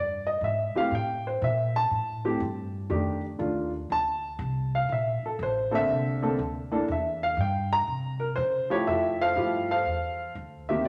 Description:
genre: jazz piano trio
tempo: 121 BPM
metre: 4/4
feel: swing 68% on 8ths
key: unclear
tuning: A4 = 439 Hz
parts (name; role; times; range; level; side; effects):
- warm baby grand piano; melody; 0.0-10.9 s; D3 to Bb5; -29 LUFS; equal; none
- upright bass; bass; 0.0-10.9 s; A1 to Db3; -35 LUFS; equal; none
room: wet large studio reverb, RT60 1.4 s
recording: none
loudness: -28 LUFS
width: mono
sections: 0.0-8.9 A section; 8.9-10.9 B section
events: grand piano solo 0.0-8.9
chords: 0.0 E7#9; 0.9 A7(no3); 2.9 F13; 4.9 Bbmaj9; 6.9 Em; 7.9 C7(no3); 8.9 Fmaj9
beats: 0.42 | 0.91 1.41 1.91 2.41 | 2.90 3.40 3.90 4.39 | 4.89 5.39 5.89 6.38 | 6.88 7.38 7.87 8.37 | 8.87 9.36 9.86 10.36 | 10.85

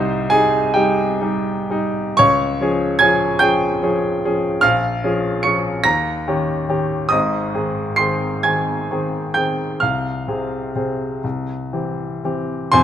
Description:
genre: classical, romantic nocturne for solo piano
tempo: 39-51 BPM (dotted quarters)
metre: 6/8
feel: rubato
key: unclear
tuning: A4 = 441 Hz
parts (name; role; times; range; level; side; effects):
- clear baby grand piano; solo; 0.0-12.8 s; F1 to Db7; -16 LUFS; equal; none
room: light reverb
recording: close, detailed microphones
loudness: -16 LUFS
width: side -10 dB against mid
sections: 0.0-12.7 A section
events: none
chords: 0.0 Cm; 2.2 Db; 4.6 Bbm7; 5.9 Eb7; 7.1 Ab; 9.8 Fm/C; 11.2 C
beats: 0.75 | 2.19 3.41 | 4.63 5.85 | 7.12 8.45 | 9.81 11.24 | 12.73

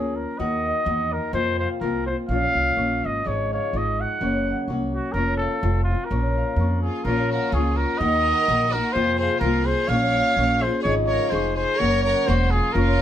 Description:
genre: mexican folk, mariachi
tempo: 126 BPM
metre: 2/4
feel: swing 55% on 8ths, rubato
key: Bb minor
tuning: A4 = 443 Hz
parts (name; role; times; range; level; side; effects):
- mellow trumpet; melody; 0.0-13.0 s; F4 to Gb5; -24 LUFS; equal; none
- nylon-string guitar; accompaniment; 0.0-13.0 s; F2 to Gb4; -26 LUFS; left 2 dB; none
- concert harp; arpeggios; 0.0-13.0 s; Bb4 to Db6; -31 LUFS; left 1 dB; none
- upright bass; bass; 0.0-13.0 s; E1 to F2; -25 LUFS; equal; none
- rich chamber violin section; second line; 6.8-13.0 s; F4 to Db5; -30 LUFS; right 1 dB; none
room: moderate studio reverb, RT60 0.5 s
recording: none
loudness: -20 LUFS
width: side -10 dB against mid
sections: 0.0-7.0 A section; 7.0-13.0 A section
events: none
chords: 0.4 Ebm; 1.3 Fsus4; 2.3 Bbm; 3.2 Dbadd9/Ab; 4.2 Gb; 5.1 Bbm/F; 5.6 F; 6.1 Bbm; 8.0 Ebm; 9.0 Fsus4; 9.9 Bbm; 10.8 Dbadd9/Ab; 11.8 Gb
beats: | 0.40 0.87 | 1.34 1.81 | 2.29 2.76 | 3.25 3.73 | 4.20 4.67 | 5.14 5.61 | 6.08 6.56 | 7.04 7.53 | 8.01 8.48 | 8.95 9.42 | 9.89 10.37 | 10.84 11.32 | 11.80 12.27 | 12.75

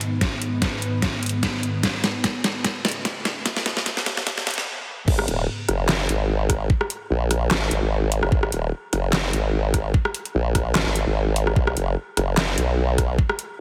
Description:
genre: heavy wobble dubstep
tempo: 148 BPM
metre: 4/4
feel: swing 54% on 16ths, half-time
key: G# minor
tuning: A4 = 440 Hz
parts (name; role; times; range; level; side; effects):
- evolving wavetable pad; sustained chords; 0.0-4.6 s; G#2 to B3; -32 LUFS; equal; ensemble chorus, built-in reverb, phaser, sidechain pumping
- dubstep drum kit; drums; 0.0-13.5 s; crash cymbal, handclaps, hi-hat, rim click, snare drum; -27 LUFS; equal; none
- electronic kick drum; drums; 0.2-13.3 s; none; -24 LUFS; equal; none
- formant-sweep wobble bass; bass; 5.1-13.2 s; D#1 to B1; -24 LUFS; equal; chorus, overdrive
room: light reverb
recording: heavily compressed radio sound, multiband compression, high-pass filter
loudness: -23 LUFS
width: mono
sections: 0.0-5.1 A section; 5.1-13.6 B section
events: build-up 0.0-5.1; drum fill 0.0-4.7; filter sweep on ambient pad 0.0-5.1; filter sweep 0.0-5.1; stop 4.7-5.1; drop 5.1-13.6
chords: 0.0 G#m; 5.1 G#5; 11.6 B5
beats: | 0.21 0.62 1.02 1.43 | 1.83 2.24 2.65 3.05 | 3.46 3.86 4.27 4.67 | 5.08 5.48 5.89 6.29 | 6.70 7.10 7.51 7.92 | 8.32 8.73 9.13 9.54 | 9.94 10.35 10.75 11.16 | 11.56 11.97 12.38 12.78 | 13.19

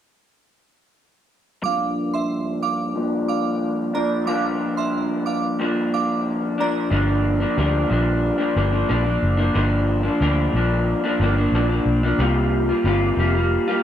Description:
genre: indie pop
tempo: 91 BPM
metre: 4/4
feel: straight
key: G minor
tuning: A4 = 440 Hz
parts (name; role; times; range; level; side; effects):
- glassy synth bell; second line; 1.6-6.8 s; D5 to D6; -26 LUFS; right 5 dB; lush chorus, slapback echo
- electric guitar through a small old amp; accompaniment; 1.6-13.8 s; G2 to F4; -20 LUFS; left 1 dB; lush chorus, warbly pitch drift, low-pass filter
- vintage muted fingered electric bass; bass; 6.9-13.6 s; F1 to D2; -21 LUFS; equal; none
room: light reverb, digital ambience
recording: none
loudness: -18 LUFS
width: side -10 dB against mid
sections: 1.6-6.9 A section; 6.9-13.8 B section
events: filter sweep on clean electric guitar 1.6-6.9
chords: 1.6 Gm7; 12.2 C7sus4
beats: | 1.64 2.30 2.96 3.62 | 4.28 4.94 5.60 6.26 | 6.92 7.58 8.23 8.89 | 9.55 10.21 10.87 11.53 | 12.19 12.85 13.50

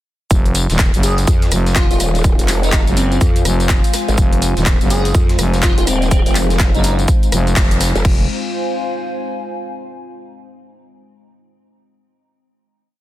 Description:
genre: bass house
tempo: 124 BPM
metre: 4/4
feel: swing 61% on 16ths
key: F phrygian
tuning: A4 = 440 Hz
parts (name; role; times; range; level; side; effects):
- deep dark ambient pad; sustained chords; 1.3-8.3 s; Ab3 to C5; -27 LUFS; left 4 dB; chorus, built-in reverb, sidechain pumping
- growling FM bass; bass; 0.3-8.3 s; Eb1 to Gb1; -16 LUFS; equal; overdrive, sidechain pumping
- big-room dance drum kit; drums; 0.3-8.2 s; crash cymbal, handclaps, hi-hat, rim click, tambourine; -22 LUFS; left 1 dB; overdrive
- breakbeat sampler-style drum kit; drums; 0.3-7.9 s; hi-hat, shaker, snare drum; -30 LUFS; equal; none
- electronic kick drum; drums; 0.3-8.2 s; none; -14 LUFS; equal; overdrive
- warbly tape-like pad; texture; 0.7-9.9 s; F4 to Ab5; -26 LUFS; equal; chorus, built-in reverb, sidechain pumping
- airy dreamy lead; melody; 1.0-6.9 s; C4 to Ab4; -24 LUFS; equal; chorus, cassette tape, dub echo
- growl bass; bass; 1.3-8.0 s; Eb1 to F2; -18 LUFS; equal; chorus, overdrive, sidechain pumping
room: little or no reverb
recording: dense, heavily limited modern master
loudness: -13 LUFS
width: side -14 dB against mid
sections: 0.3-8.0 drop; 8.0-10.0 final chord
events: drop 0.3-8.0; band accent 7.6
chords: 0.3 Fm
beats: | 0.31 0.79 1.27 1.76 | 2.24 2.73 3.21 3.69 | 4.18 4.66 5.14 5.63 | 6.11 6.60 7.08 7.57 | 8.05 8.53 9.02 9.50

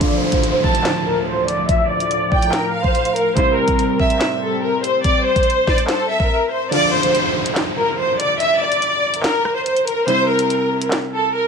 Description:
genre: hip hop, drill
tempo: 143 BPM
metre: 4/4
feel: half-time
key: D minor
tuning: A4 = 440 Hz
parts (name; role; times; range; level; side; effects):
- warm studio violin section; melody; 0.0-11.5 s; A4 to E5; -18 LUFS; left 1 dB; low-pass filter, digital delay
- clear concert grand piano; accompaniment; 0.0-11.5 s; C3 to F4; -26 LUFS; right 2 dB; low-pass filter
- warm analog pad; sustained chords; 0.0-6.7 s; D2 to C4; -26 LUFS; equal; chorus, tremolo, low-pass filter
- drill drum kit; drums; 0.0-11.0 s; crash cymbal, handclaps, hi-hat, kick drum, rim click, snare drum; -21 LUFS; equal; vintage 12-bit sampler grit
- downlifter; sound effects; 0.0-3.4, 6.7-10.1 s; none; -26 LUFS; equal; none
- rich studio violin section; second line; 0.6-6.3 s; C5 to A5; -23 LUFS; right 3 dB; digital delay
room: light reverb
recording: none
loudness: -15 LUFS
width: side -6 dB against mid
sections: 0.0-6.7 A section; 6.7-11.5 B section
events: filter sweep 0.0-6.7; silent gap 6.3-6.7; kick muted 6.7-11.5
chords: 0.0 Dm; 3.4 Am7; 6.7 Dm; 10.1 C7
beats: | 0.01 0.43 0.85 1.27 | 1.69 2.11 2.53 2.95 | 3.37 3.79 4.21 4.63 | 5.04 5.46 5.88 6.30 | 6.72 7.14 7.56 7.98 | 8.40 8.82 9.24 9.66 | 10.08 10.50 10.92 11.34

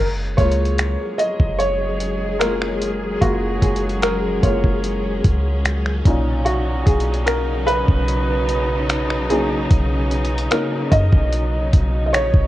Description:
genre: contemporary R&B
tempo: 74 BPM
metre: 4/4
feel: straight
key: F# major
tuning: A4 = 440 Hz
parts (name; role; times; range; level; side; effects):
- felt-muted upright piano; accompaniment; 0.0-12.5 s; A#2 to D#5; -21 LUFS; equal; none
- clear studio string section; sustained chords; 0.0-12.5 s; C#3 to G#4; -26 LUFS; equal; none
- clean 808-style bass; bass; 0.0-12.5 s; F#1 to F#2; -21 LUFS; equal; none
- dusty soul sampler-style drum kit; drums; 0.4-12.5 s; finger snaps, hi-hat, kick drum; -19 LUFS; equal; none
room: light reverb, digital ambience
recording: worn, warbling old tape, cassette tape, warbly pitch drift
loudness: -16 LUFS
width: side -14 dB against mid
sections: 0.0-12.5 A section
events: felt piano solo 0.0-12.5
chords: 0.0 F#maj9; 6.1 Bmaj9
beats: 0.79 1.60 2.41 | 3.22 4.03 4.84 5.65 | 6.46 7.27 8.08 8.89 | 9.71 10.52 11.33 12.14

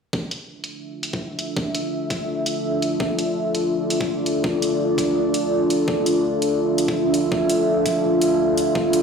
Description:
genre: half-time drum and bass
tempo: 167 BPM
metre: 4/4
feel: swing 59% on 16ths, half-time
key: D minor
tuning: A4 = 437 Hz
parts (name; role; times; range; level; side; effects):
- deep dark ambient pad; sustained chords; 0.9-9.0 s; D4 to E5; -20 LUFS; equal; chorus, built-in reverb, vintage 12-bit sampler grit, sidechain pumping
- electronic kick drum; drums; 0.1-8.8 s; none; -26 LUFS; equal; overdrive, high-pass filter on kick, high-pass filter on room
- electronic hi-hat; drums; 0.3-9.0 s; none; -28 LUFS; equal; overdrive, low-pass filter on hats, low-pass filter on room
room: wet digital room reverb, RT60 1.4 s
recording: played on a big sound system in a bare room, stone room reverb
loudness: -19 LUFS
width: side -6 dB against mid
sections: 0.1-9.0 A section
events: none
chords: 0.1 Dmadd9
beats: | 0.13 0.49 0.85 1.21 | 1.57 1.93 2.29 2.65 | 3.01 3.37 3.72 4.08 | 4.44 4.80 5.16 5.52 | 5.88 6.24 6.60 6.96 | 7.32 7.68 8.04 8.39 | 8.75

